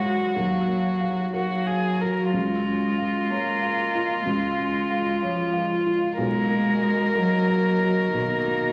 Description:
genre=neoclassical piano and strings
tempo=62 BPM (dotted quarters)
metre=6/8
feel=rubato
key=Db mixolydian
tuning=A4 = 440 Hz
part: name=rich violin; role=melody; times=0.0-8.7 s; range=F4 to Bb4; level=-29 LUFS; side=equal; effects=none
part: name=warm cello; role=second line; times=0.0-8.7 s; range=Eb3 to Bb3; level=-27 LUFS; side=equal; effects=none
part: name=felt-muted upright piano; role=accompaniment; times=0.0-8.7 s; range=Cb2 to F5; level=-32 LUFS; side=equal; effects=none
part: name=warbly tape-like pad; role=sustained chords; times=0.0-8.7 s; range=Gb3 to F5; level=-32 LUFS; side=equal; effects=chorus, built-in reverb
room=wet large studio reverb, RT60 1.2 s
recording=vinyl crackle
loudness=-24 LUFS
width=mono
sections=0.0-8.7 A section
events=none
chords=0.0 Ebmadd9; 2.3 Db; 6.2 Cbmaj7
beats=| 0.36 1.35 | 2.35 3.32 | 4.28 5.24 | 6.19 7.16 | 8.14

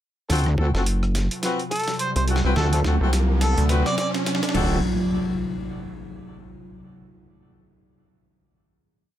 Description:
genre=glitch hop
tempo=106 BPM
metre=4/4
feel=swing 58% on 16ths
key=unclear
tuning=A4 = 439 Hz
part: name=warbly tape-like pad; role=sustained chords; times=0.3-4.8 s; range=C3 to E#4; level=-29 LUFS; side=equal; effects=chorus, built-in reverb, sidechain pumping
part: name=mellow horn section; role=stabs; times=0.3-4.8 s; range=C4 to B4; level=-28 LUFS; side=left 2 dB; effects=sidechain pumping, ping-pong delay
part: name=wobble bass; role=bass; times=0.3-4.8 s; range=D1 to D2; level=-20 LUFS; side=equal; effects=chorus, tube saturation
part: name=boom bap sampler-style drum kit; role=drums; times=0.3-4.7 s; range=crash cymbal, hi-hat, rim click, snare drum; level=-30 LUFS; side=equal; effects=overdrive, high-pass filter on snare, high-pass filter on hats, high-pass filter on cymbals
part: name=electronic kick drum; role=drums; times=0.3-4.7 s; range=none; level=-33 LUFS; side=equal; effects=overdrive, high-pass filter on kick
part: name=riser and impact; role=sound effects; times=1.3-6.8 s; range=none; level=-30 LUFS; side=right 1 dB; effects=none
part: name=rubbery square bass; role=bass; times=0.7-3.8 s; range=F#1 to D2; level=-20 LUFS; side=equal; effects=none
part: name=clear harmonica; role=melody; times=1.7-4.1 s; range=A4 to D5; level=-28 LUFS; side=equal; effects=vintage 12-bit sampler grit, low-pass filter, ping-pong delay
room=moderate studio reverb, RT60 0.5 s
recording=none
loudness=-20 LUFS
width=side -12 dB against mid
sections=0.3-4.8 build; 4.8-7.1 final hit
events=build-up 0.3-4.8; drum fill 0.3-4.8; filter sweep on ambient pad 0.3-4.8; riser 1.3-4.8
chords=0.3 D7#9; 4.8 N.C.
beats=| 0.30 0.87 1.43 2.00 | 2.56 3.13 3.70 4.26 | 4.83 5.39 5.96 6.53

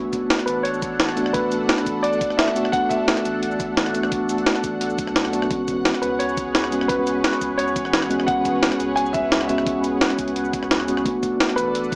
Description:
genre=liquid drum and bass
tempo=173 BPM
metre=4/4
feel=straight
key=A major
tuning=A4 = 439 Hz
part: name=mellow tine electric piano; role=accompaniment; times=0.0-12.0 s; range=G#3 to F#4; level=-26 LUFS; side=equal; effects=none
part: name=lush unison pad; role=sustained chords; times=0.0-12.0 s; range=D4 to F#5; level=-31 LUFS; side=equal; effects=chorus, phaser, sidechain pumping
part: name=warm sub bass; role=bass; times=0.0-12.0 s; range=E1 to C#2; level=-42 LUFS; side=equal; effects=none
part: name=breakbeat sampler-style drum kit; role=drums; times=0.1-12.0 s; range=hi-hat, rim click, shaker, snare drum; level=-24 LUFS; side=equal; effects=none
part: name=electronic kick drum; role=drums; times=0.1-12.0 s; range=none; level=-34 LUFS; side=equal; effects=none
part: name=warm baby grand piano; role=melody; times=0.5-3.9, 6.0-12.0 s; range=B4 to G#5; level=-27 LUFS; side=equal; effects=dub echo
room=moderate plate reverb, RT60 1.1 s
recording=small speaker sound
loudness=-21 LUFS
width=mono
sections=0.0-12.0 A section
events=none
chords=0.0 E9sus4; 5.5 Amaj13; 11.1 E9sus4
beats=0.30 0.65 1.00 | 1.34 1.69 2.04 2.38 | 2.73 3.08 3.42 3.77 | 4.12 4.46 4.81 5.16 | 5.50 5.85 6.20 6.54 | 6.89 7.24 7.59 7.93 | 8.28 8.63 8.97 9.32 | 9.67 10.01 10.36 10.71 | 11.05 11.40 11.75

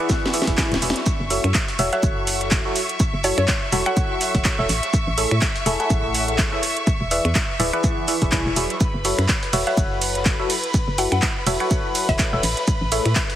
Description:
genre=piano house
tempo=124 BPM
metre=4/4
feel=swing 57% on 16ths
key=F# minor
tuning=A4 = 444 Hz
part: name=rich chamber violin section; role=sustained chords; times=0.0-13.4 s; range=B4 to C#6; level=-28 LUFS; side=equal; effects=vintage 12-bit sampler grit, sidechain pumping
part: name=barking FM electric piano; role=riff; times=0.0-13.1 s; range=E3 to G#5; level=-25 LUFS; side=equal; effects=phaser, cassette tape, sidechain pumping
part: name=dusty soul sampler-style drum kit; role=drums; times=0.1-13.4 s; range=hi-hat, shaker, snare drum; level=-32 LUFS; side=right 1 dB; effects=none
part: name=electronic kick drum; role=drums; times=0.1-13.3 s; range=none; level=-22 LUFS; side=equal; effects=none
part: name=house drum kit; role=drums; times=0.1-13.3 s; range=finger snaps, handclaps, hi-hat, ride cymbal, snare drum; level=-25 LUFS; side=right 1 dB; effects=none
part: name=organ-like FM bass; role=bass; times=0.5-13.1 s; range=D1 to A2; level=-24 LUFS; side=equal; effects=tube saturation, sidechain pumping
part: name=mallet-like synth pluck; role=melody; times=1.9-4.3, 9.7-12.4 s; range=C#5 to F#5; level=-28 LUFS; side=left 1 dB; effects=lush chorus, ping-pong delay
room=light reverb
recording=heavily compressed radio sound, multiband compression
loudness=-18 LUFS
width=side -12 dB against mid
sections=0.0-13.4 A section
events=drum fill 0.1-1.1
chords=0.0 E7; 1.1 F#m7; 4.7 Amaj7; 6.6 E7; 8.8 F#m7; 12.4 Amaj7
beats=0.10 0.58 | 1.06 1.55 2.03 2.52 | 3.00 3.48 3.97 4.45 | 4.93 5.42 5.90 6.39 | 6.87 7.35 7.84 8.32 | 8.80 9.29 9.77 10.26 | 10.74 11.22 11.71 12.19 | 12.68 13.16

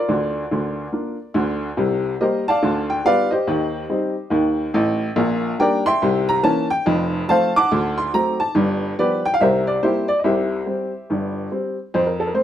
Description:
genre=jazz, stride piano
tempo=142 BPM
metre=4/4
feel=swing 62% on 8ths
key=unclear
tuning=A4 = 440 Hz
part: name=warm upright piano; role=solo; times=0.0-12.4 s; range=F1 to D6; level=-18 LUFS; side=equal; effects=none
room=moderate studio reverb, RT60 0.8 s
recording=none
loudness=-18 LUFS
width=side -10 dB against mid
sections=0.0-11.9 A section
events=none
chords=0.1 Bb/D; 1.8 C5; 2.6 G7/D; 3.5 Cm/Eb; 5.2 Gm/Bb; 6.0 C7b9; 6.9 F; 7.7 D7; 8.6 G7; 9.4 C7; 10.2 C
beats=| 0.08 0.50 0.93 1.35 | 1.77 2.20 2.62 3.05 | 3.47 3.89 4.32 4.74 | 5.17 5.59 6.01 6.44 | 6.86 7.28 7.71 8.13 | 8.55 8.98 9.40 9.82 | 10.25 10.67 11.09 11.52 | 11.94 12.36

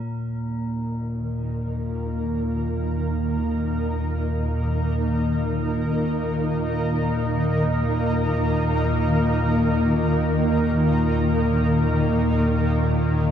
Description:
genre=dark ambient drone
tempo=free time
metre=none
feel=none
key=unclear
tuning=A4 = 436 Hz
part: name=granular cloud pad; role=sustained chords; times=0.9-13.3 s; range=Eb3 to Bb4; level=-24 LUFS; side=left 1 dB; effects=built-in reverb
part: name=tubular bells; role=arpeggios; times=0.0-1.4 s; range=Bb4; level=-47 LUFS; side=left 2 dB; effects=diffuse ambient delay
part: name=analog drone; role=drone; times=0.0-13.3 s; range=Eb2 to Bb2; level=-22 LUFS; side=equal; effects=chorus
room=moderate huge ambient reverb, RT60 7.9 s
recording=cassette tape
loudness=-20 LUFS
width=side -9 dB against mid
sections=0.0-13.3 A section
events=none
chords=0.0 Eb5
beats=free time

